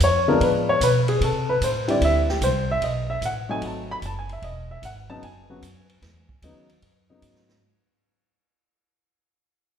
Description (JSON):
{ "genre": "jazz piano trio", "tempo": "150 BPM", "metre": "4/4", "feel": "swing 67% on 8ths", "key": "E major", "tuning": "A4 = 440 Hz", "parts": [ { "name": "warm baby grand piano", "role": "melody", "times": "0.0-7.6 s", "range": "C#3 to B5", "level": "-22 LUFS", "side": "left 1 dB", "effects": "none" }, { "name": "upright bass", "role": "bass", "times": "0.0-7.6 s", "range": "E1 to C3", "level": "-26 LUFS", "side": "equal", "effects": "none" }, { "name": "vintage drum kit", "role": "drums", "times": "0.0-7.6 s", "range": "hi-hat, kick drum, ride cymbal, snare drum", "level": "-32 LUFS", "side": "right 2 dB", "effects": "none" } ], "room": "moderate scoring stage reverb, RT60 1.9 s", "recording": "recorded in a church or concert hall", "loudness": "-20 LUFS", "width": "side -8 dB against mid", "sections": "0.0-7.6 A section", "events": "fade-out 0.0-7.6", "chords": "0.0 G7b9 (rootless); 1.2 C69; 2.8 B7b9; 4.4 Emaj9" }